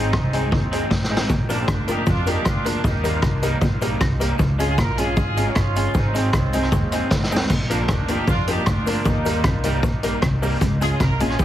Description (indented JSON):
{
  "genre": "ska",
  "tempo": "154 BPM",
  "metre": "4/4",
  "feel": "straight",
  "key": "Eb major",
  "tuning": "A4 = 440 Hz",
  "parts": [
    { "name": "warm horn section", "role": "melody", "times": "0.0-11.4 s", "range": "Ab3 to Bb4", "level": "-28 LUFS", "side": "right 1 dB", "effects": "dub echo" },
    { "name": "electric guitar at the edge of break-up", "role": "accompaniment", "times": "0.0-11.4 s", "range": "F3 to F4", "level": "-28 LUFS", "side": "right 2 dB", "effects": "warbly pitch drift, dub echo" },
    { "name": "honky-tonk upright piano", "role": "stabs", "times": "0.0-11.3 s", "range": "Ab3 to Bb4", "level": "-28 LUFS", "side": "left 3 dB", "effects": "none" },
    { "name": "upright bass", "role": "bass", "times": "0.0-11.4 s", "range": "G1 to F2", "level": "-24 LUFS", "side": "equal", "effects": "none" },
    { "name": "clean electric guitar", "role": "riff", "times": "0.1-11.4 s", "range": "G2 to F3", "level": "-31 LUFS", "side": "left 3 dB", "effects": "none" },
    { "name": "street-band drum kit", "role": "drums", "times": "0.1-11.4 s", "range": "crash cymbal, hi-hat, kick drum, rim click, snare drum", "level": "-21 LUFS", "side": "equal", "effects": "none" },
    { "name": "cabasa", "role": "percussion", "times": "1.3-11.4 s", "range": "none", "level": "-42 LUFS", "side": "right 8 dB", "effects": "none" }
  ],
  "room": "light reverb",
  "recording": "heavily compressed radio sound, multiband compression, vinyl crackle",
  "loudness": "-18 LUFS",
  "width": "side -12 dB against mid",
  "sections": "0.0-1.3 A section; 1.3-11.4 A section",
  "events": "drum fill 0.9-1.3, 7.1-7.5",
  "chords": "0.0 Ab; 1.3 Bb; 2.8 Eb; 4.4 Db; 5.9 Ab; 7.5 Bb; 9.1 Eb; 10.6 Db"
}